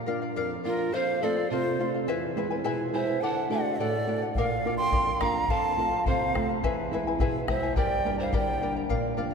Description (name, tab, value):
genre	andean folk, Andean ensemble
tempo	106 BPM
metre	2/4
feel	straight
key	G dorian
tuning	A4 = 440 Hz
part	charango	accompaniment	0.0-9.3 s	E4 to Bb5	-32 LUFS	left 5 dB	none
part	nylon-string guitar	accompaniment	0.0-9.3 s	E2 to F#4	-31 LUFS	right 3 dB	none
part	bright large quena	melody	0.7-8.7 s	Bb4 to C6	-30 LUFS	right 1 dB	none
part	mellow polished pan flute	second line	0.7-8.7 s	F4 to G5	-32 LUFS	right 2 dB	none
part	bombo	percussion	4.4-9.0 s	none	-31 LUFS	left 1 dB	none
room	wet cathedral reverb, RT60 5.9 s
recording	recorded in a church or concert hall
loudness	-25 LUFS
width	side -6 dB against mid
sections	0.0-8.9 A section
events	none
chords	0.0 Bb; 0.9 F; 2.1 E; 3.2 D; 4.3 Bb; 5.5 F; 6.6 E; 7.8 Gm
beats	0.36 | 0.93 1.50 | 2.07 2.64 | 3.21 3.78 | 4.35 4.92 | 5.49 6.05 | 6.62 7.19 | 7.76 8.33 | 8.90